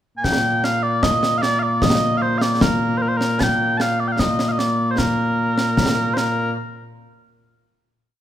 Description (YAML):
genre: scottish traditional, Scottish pipe music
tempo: 76 BPM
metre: 2/4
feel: straight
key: Bb major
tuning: A4 = 438 Hz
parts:
  - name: mellow small bagpipes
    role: melody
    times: 0.2-6.5 s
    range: Bb2 to A5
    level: -18 LUFS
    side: equal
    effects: none
  - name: concert snare drum and concert bass drum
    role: drums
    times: 0.2-6.5 s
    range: none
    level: -22 LUFS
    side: equal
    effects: none
room: moderate recital hall reverb, RT60 1.6 s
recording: minimal, uncompressed stereo recording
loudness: -17 LUFS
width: side -11 dB against mid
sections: 0.0-0.2 pickup bar; 0.2-6.6 A section; 6.6-8.1 final hit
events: none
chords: none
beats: | 0.24 1.03 | 1.82 2.61 | 3.40 4.19 | 4.98 5.77